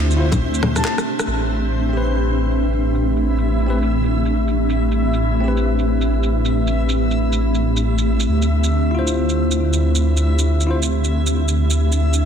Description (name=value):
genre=future garage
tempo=137 BPM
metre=4/4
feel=swing 60% on 16ths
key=A minor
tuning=A4 = 443 Hz
part: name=bell-like tine electric piano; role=accompaniment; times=0.0-10.8 s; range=C4 to C5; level=-26 LUFS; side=left 3 dB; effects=vintage 12-bit sampler grit, sidechain pumping, digital delay
part: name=granular cloud pad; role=sustained chords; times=0.0-12.3 s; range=A3 to E5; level=-21 LUFS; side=equal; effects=built-in reverb, sidechain pumping
part: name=dark detuned saw bass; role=bass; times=0.0-12.3 s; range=A1 to D2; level=-18 LUFS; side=equal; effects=sidechain pumping
part: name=backwards swelling texture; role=texture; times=0.0-12.3 s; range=C4 to E5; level=-29 LUFS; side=left 1 dB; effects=built-in reverb
part: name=electronic shaker, bongos, rim click and handclaps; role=drums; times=0.1-12.2 s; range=none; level=-24 LUFS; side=equal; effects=low-pass filter on perc, soft clipping on snare, low-pass filter on snare
part: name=breathy flute-like synth lead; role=melody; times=0.8-0.9 s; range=A5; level=-30 LUFS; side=left 2 dB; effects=chorus, digital delay
room=light reverb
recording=dense, heavily limited modern master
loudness=-16 LUFS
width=side -8 dB against mid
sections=0.0-1.3 A section; 1.3-12.3 B section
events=drum fill 0.6-1.3; band accent 1.2; filter sweep on drum 1.3-12.3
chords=0.0 Dm9; 1.3 Am7; 8.3 Dm9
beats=0.40 0.84 | 1.28 1.72 2.16 2.59 | 3.03 3.47 3.91 4.35 | 4.78 5.22 5.66 6.10 | 6.54 6.97 7.41 7.85 | 8.29 8.72 9.16 9.60 | 10.04 10.48 10.91 11.35 | 11.79 12.23